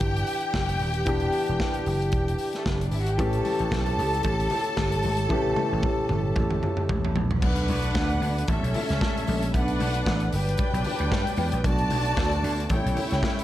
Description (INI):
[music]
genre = disco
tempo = 114 BPM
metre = 4/4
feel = swing 56% on 16ths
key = unclear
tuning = A4 = 440 Hz
[part]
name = clear studio string section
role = second line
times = 0.0-13.4 s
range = A3 to A5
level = -29 LUFS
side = equal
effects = slapback echo
[part]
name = warm grand piano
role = accompaniment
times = 0.0-7.4 s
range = E3 to G4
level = -31 LUFS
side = left 2 dB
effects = none
[part]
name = mellow French horn section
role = sustained chords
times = 0.0-13.4 s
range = E3 to C#5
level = -32 LUFS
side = equal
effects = none
[part]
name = vintage slap bass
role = bass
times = 0.0-13.2 s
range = Eb1 to G2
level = -27 LUFS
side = equal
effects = none
[part]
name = modern studio drum kit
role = drums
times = 0.0-13.4 s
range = crash cymbal, hi-hat, kick drum, snare drum, toms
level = -29 LUFS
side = equal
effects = none
[part]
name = congas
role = percussion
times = 3.2-13.4 s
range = none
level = -35 LUFS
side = left 5 dB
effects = none
[sound]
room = light reverb, small room ambience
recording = dark, warm production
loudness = -23 LUFS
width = side -13 dB against mid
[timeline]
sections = 0.0-7.4 A section; 7.4-13.4 B section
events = drum fill 5.3-7.4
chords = 0.0 Em7; 3.2 A7; 7.4 Bm7; 8.5 A7; 9.5 Bm7; 10.3 Gmaj7; 11.6 Bm7; 12.7 A7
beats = 0.01 0.54 | 1.07 1.60 2.13 2.66 | 3.19 3.72 4.25 4.78 | 5.31 5.84 6.37 6.89 | 7.42 7.95 8.48 9.01 | 9.53 10.06 10.59 11.12 | 11.64 12.17 12.70 13.23